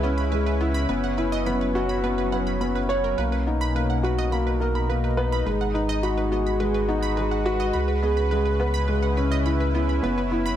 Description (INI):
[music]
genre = piano and strings electronica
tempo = 105 BPM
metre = 4/4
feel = straight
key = B major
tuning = A4 = 439 Hz
[part]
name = lush unison pad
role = sustained chords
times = 0.0-10.6 s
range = B2 to B4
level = -29 LUFS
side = equal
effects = chorus
[part]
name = analog pluck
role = arpeggios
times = 0.0-10.6 s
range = B3 to B5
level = -32 LUFS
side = right 4 dB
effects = chorus, digital delay
[part]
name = dark grand piano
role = riff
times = 0.0-10.6 s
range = G#3 to C#5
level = -25 LUFS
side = left 1 dB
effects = digital delay
[part]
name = warm sub bass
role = bass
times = 0.0-10.6 s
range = F#1 to C#2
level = -26 LUFS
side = equal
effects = none
[sound]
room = moderate recital hall reverb, RT60 1.4 s, digital ambience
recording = none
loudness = -21 LUFS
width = side -10 dB against mid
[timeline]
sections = 0.0-10.6 A section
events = none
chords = 0.0 C#m7; 0.9 F#7sus4; 3.2 Bmaj7; 5.5 G#m7; 7.7 C#m7; 10.0 F#7sus4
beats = 0.32 | 0.89 1.46 2.03 2.60 | 3.18 3.75 4.32 4.89 | 5.46 6.03 6.61 7.18 | 7.75 8.32 8.89 9.46 | 10.03